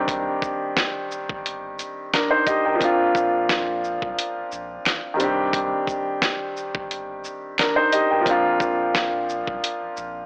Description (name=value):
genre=hip hop, boom-bap hip-hop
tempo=88 BPM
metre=4/4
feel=swing 54% on 16ths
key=C minor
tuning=A4 = 440 Hz
part: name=warm concert grand piano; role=accompaniment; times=0.0-10.3 s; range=Eb3 to G5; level=-21 LUFS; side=equal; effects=high-pass filter, low-pass filter
part: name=soft dub sub bass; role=bass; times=0.0-10.2 s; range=G1 to C2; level=-44 LUFS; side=equal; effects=none
part: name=dusty soul sampler-style drum kit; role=drums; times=0.1-10.1 s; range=hi-hat, kick drum, shaker, snare drum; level=-23 LUFS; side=equal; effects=none
part: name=finger snaps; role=percussion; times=3.5-9.1 s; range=none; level=-28 LUFS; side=equal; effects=none
room=light reverb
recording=dry, gritty hardware recording, transformer saturation, AM radio sound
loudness=-20 LUFS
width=side -35 dB against mid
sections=0.0-10.3 A section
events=none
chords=0.0 Cmadd9; 2.8 Bbadd9; 5.2 Cmadd9; 8.3 Bbadd9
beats=| 0.08 0.76 1.44 2.12 | 2.81 3.49 4.17 4.85 | 5.53 6.22 6.90 7.58 | 8.26 8.94 9.62